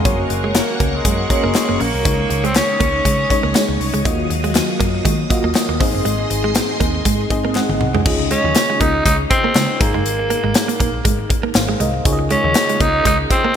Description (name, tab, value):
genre	1980s-style pop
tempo	120 BPM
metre	4/4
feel	swing 55% on 16ths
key	Db major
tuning	A4 = 441 Hz
part	FM electric piano with tremolo	accompaniment	0.0-13.6 s	Ab2 to Ab5	-22 LUFS	left 1 dB	phaser
part	string machine, full ensemble	sustained chords	0.0-8.0 s	Gb3 to Eb6	-26 LUFS	left 1 dB	phaser, ensemble chorus
part	vintage muted picked electric bass	bass	0.0-13.2 s	Gb1 to Eb3	-23 LUFS	equal	none
part	direct-recorded clean electric guitar	riff	0.1-13.5 s	F3 to Eb4	-24 LUFS	right 6 dB	wide subtle chorus, ping-pong delay
part	modern studio drum kit	drums	0.1-13.4 s	crash cymbal, hi-hat, kick drum, snare drum, tambourine, toms	-19 LUFS	equal	gated reverb
part	breathy tenor saxophone	melody	0.6-3.8, 8.3-13.6 s	Ab3 to Eb4	-19 LUFS	equal	ping-pong delay
part	group handclap	percussion	0.6-12.7 s	none	-34 LUFS	left 5 dB	none
room	moderate lush hall reverb, RT60 2.3 s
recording	bright 1980s-style digital production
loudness	-14 LUFS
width	side -8 dB against mid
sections	0.0-8.1 A section; 8.1-13.6 B section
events	drum fill 7.6-8.1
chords	0.1 Gb; 2.1 Dbsus2; 4.1 Ebmadd9; 5.8 Ab; 8.1 Dbadd9; 9.8 Absus2; 12.1 Dbadd9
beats	| 0.05 0.55 1.05 1.55 | 2.05 2.55 3.05 3.55 | 4.05 4.55 5.05 5.55 | 6.05 6.55 7.05 7.55 | 8.05 8.55 9.05 9.55 | 10.05 10.55 11.05 11.55 | 12.05 12.55 13.05 13.55